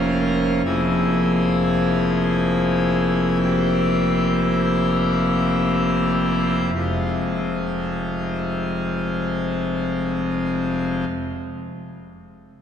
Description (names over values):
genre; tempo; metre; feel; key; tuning
classical, chorale-style piece for pipe organ; 33-47 BPM; 4/4; rubato; F minor; A4 = 440 Hz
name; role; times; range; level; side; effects
pipe organ, full organ; solo; 0.0-11.1 s; F1 to Bb4; -19 LUFS; left 1 dB; none
room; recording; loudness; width
wet church reverb, RT60 3.5 s; heard from further back in the room; -19 LUFS; side -8 dB against mid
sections
0.0-6.8 A section; 6.8-12.6 B section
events
slowing down 0.0-6.8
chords
0.0 Bbm/F; 0.7 C7/F; 6.8 Fm